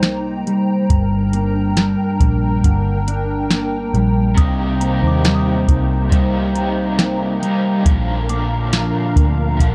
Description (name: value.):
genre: dream pop.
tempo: 69 BPM.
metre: 4/4.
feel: straight.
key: C minor.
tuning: A4 = 440 Hz.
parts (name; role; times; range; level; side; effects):
hollow soft pad; sustained chords; 0.0-9.7 s; D4 to Bb5; -27 LUFS; equal; ensemble chorus.
mellow electric guitar; arpeggios; 0.0-9.7 s; G2 to Eb4; -22 LUFS; equal; analog chorus, tape echo.
vintage muted picked electric bass; bass; 0.0-9.7 s; G1 to Eb2; -22 LUFS; equal; none.
soft vintage rhythm box; drums; 0.0-9.7 s; hi-hat, kick drum, snare drum; -18 LUFS; equal; none.
raw garage guitar; accompaniment; 4.3-9.7 s; Bb2 to Eb4; -28 LUFS; equal; overdrive, tremolo, subtle chorus.
soft synth bell; texture; 4.4-9.7 s; Bb5 to Eb6; -35 LUFS; equal; chorus, tape echo.
room: light reverb.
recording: dark, warm production.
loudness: -17 LUFS.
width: mono.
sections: 0.0-9.7 A section.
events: none.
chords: 0.0 Cm7; 0.9 Gm; 4.4 Cm7; 7.9 Bb.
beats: 0.03 | 0.90 1.77 2.64 3.51 | 4.38 5.25 6.12 6.99 | 7.86 8.73 9.60.